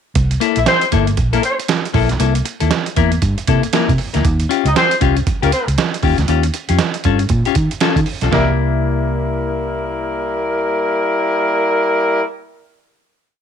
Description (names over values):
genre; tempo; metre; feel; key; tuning
funk; 118 BPM; 4/4; swing 60% on 16ths; C mixolydian; A4 = 440 Hz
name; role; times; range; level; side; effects
vintage muted fingered electric bass; bass; 0.2-12.2 s; G1 to Eb3; -17 LUFS; right 1 dB; none
trip hop sampler-style drum kit; drums; 0.2-8.5 s; hi-hat, kick drum, snare drum; -19 LUFS; right 4 dB; none
clean electric guitar; accompaniment; 0.4-12.3 s; Bb3 to Bb4; -20 LUFS; left 15 dB; none
mellow horn section; second line; 0.6-1.6, 4.7-12.2 s; G3 to E5; -17 LUFS; left 1 dB; none
room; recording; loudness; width
digital ambience; 1960s-style stereo; -14 LUFS; side -8 dB against mid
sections
0.2-8.3 A section; 8.3-12.4 final chord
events
none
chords
0.2 C13; 4.2 Eb9; 8.3 C7